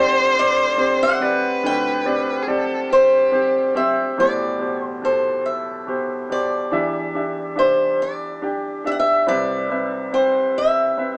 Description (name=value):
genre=acoustic folk-pop ballad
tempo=47 BPM (dotted quarters)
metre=6/8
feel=straight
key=unclear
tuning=A4 = 444 Hz
part: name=rich violin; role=second line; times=0.0-3.8 s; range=G4 to C5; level=-20 LUFS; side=equal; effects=none
part: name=bright upright piano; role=accompaniment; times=0.0-11.2 s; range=A1 to G5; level=-22 LUFS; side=equal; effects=none
part: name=picked swing-style acoustic guitar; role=melody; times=0.4-11.2 s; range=C5 to G5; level=-19 LUFS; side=equal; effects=none
room=moderate stone room reverb, RT60 1.0 s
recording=band playing live in one room, small speaker sound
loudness=-17 LUFS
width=side -34 dB against mid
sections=0.0-4.2 A section; 4.2-11.2 B section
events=none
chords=0.0 D7sus4; 4.2 Am9; 6.7 Em7; 9.3 Cmaj7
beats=0.37 | 1.64 2.91 | 4.19 5.46 | 6.73 8.01 | 9.28 10.55